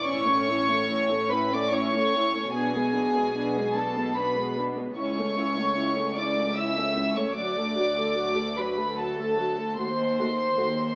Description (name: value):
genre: classical, slow romantic movement for string orchestra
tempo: 74 BPM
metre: 3/4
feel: rubato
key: A major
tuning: A4 = 441 Hz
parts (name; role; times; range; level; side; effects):
- warm symphonic violin section; melody; 0.0-10.9 s; G#5 to E6; -28 LUFS; equal; none
- warm symphonic violin section; second line; 0.0-10.9 s; G#4 to E5; -29 LUFS; equal; none
- dark studio viola section; accompaniment; 0.1-10.7 s; F#3 to A4; -29 LUFS; equal; none
- dark symphonic double bass section; bass; 0.1-10.9 s; A1 to D#2; -40 LUFS; equal; none
- rich symphonic cello section; bass; 0.1-10.9 s; C#2 to B2; -33 LUFS; equal; none
room: moderate recital hall reverb, RT60 1.5 s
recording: AM radio sound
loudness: -23 LUFS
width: side -37 dB against mid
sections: 0.1-10.9 A section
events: none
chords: 0.1 A; 2.6 G#dim/B; 5.0 A/C#; 7.4 D; 9.8 D#dim7